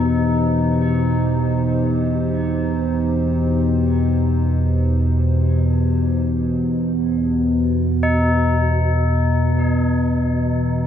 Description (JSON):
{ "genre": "dark ambient drone", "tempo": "free time", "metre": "none", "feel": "none", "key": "unclear", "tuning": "A4 = 440 Hz", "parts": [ { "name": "dark analog pad", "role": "sustained chords", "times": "0.0-10.9 s", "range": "E3 to C5", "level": "-27 LUFS", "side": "right 1 dB", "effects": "lush chorus" }, { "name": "tubular bells", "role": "arpeggios", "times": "0.0-10.9 s", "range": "D#4", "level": "-27 LUFS", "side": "left 3 dB", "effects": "diffuse ambient delay" }, { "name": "analog drone", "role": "drone", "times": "0.0-10.9 s", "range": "E2 to B2", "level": "-17 LUFS", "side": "equal", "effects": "chorus" } ], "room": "wet huge ambient reverb, RT60 7.8 s", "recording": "in a vast, echoing space", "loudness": "-16 LUFS", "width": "side -9 dB against mid", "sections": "0.0-10.9 A section", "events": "fade-out on analog synth pad 0.0-10.9; filter sweep on synth drone 0.0-10.9", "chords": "0.0 D#/E", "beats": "free time" }